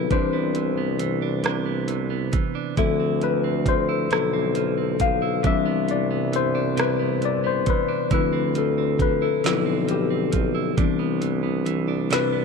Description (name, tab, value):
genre	slow six-eight R&B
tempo	45 BPM (dotted quarters)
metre	6/8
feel	straight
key	unclear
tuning	A4 = 438 Hz
part	clean electric guitar	second line	0.0-12.4 s	C3 to E4	-28 LUFS	right 16 dB	none
part	tine electric piano	accompaniment	0.0-12.4 s	E3 to F5	-24 LUFS	left 12 dB	overdrive, medium stereo tremolo
part	breathy tuba	bass	0.0-12.4 s	B1 to D2	-26 LUFS	right 3 dB	none
part	smooth R&B drum kit	drums	0.1-12.3 s	hi-hat, kick drum, rim click, snare drum	-25 LUFS	right 2 dB	none
room	light reverb, digital ambience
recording	1960s-style stereo with parts hard left and right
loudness	-20 LUFS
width	side -5 dB against mid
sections	0.0-12.4 A section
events	tine electric piano solo 0.0-12.4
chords	0.1 Cmaj9; 2.8 Dm9; 5.4 Cmaj9; 8.1 Dm9; 10.8 Cmaj9